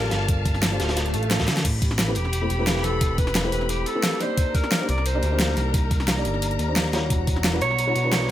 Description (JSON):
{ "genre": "liquid drum and bass", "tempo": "176 BPM", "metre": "4/4", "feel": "straight", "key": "unclear", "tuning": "A4 = 439 Hz", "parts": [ { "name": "clear alto saxophone", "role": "melody", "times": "0.0-0.1, 2.2-5.5, 7.6-8.3 s", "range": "G4 to D5", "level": "-28 LUFS", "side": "right 1 dB", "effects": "dub echo" }, { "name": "felt-muted upright piano", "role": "accompaniment", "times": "0.0-8.3 s", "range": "G3 to D5", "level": "-29 LUFS", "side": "left 1 dB", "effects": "dub echo" }, { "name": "warm studio string section", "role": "sustained chords", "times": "0.0-8.3 s", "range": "G3 to B5", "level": "-32 LUFS", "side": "left 3 dB", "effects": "none" }, { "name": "smooth synth bass", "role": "bass", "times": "0.0-8.3 s", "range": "D1 to Eb2", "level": "-25 LUFS", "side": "equal", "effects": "none" }, { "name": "crunchy breakbeat drum kit", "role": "drums", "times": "0.0-8.3 s", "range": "hi-hat, snare drum", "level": "-31 LUFS", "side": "equal", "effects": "high-pass filter on hats, high-pass filter on snare, high-pass filter on room" }, { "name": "pop drum kit", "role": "drums", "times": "0.1-8.2 s", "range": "crash cymbal, hi-hat, snare drum", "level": "-26 LUFS", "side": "equal", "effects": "none" }, { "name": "electronic kick drum", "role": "drums", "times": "0.3-7.3 s", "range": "none", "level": "-23 LUFS", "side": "equal", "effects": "none" }, { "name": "swell", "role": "sound effects", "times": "1.1-1.6 s", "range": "none", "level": "-33 LUFS", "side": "right 2 dB", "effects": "none" } ], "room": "light reverb, small room reverb", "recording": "none", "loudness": "-20 LUFS", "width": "side -12 dB against mid", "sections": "0.0-8.3 A section", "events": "swell 1.1-1.6; drum fill 1.4", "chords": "0.0 Gm9; 1.6 Am9; 4.4 Cm9; 7.1 Em9" }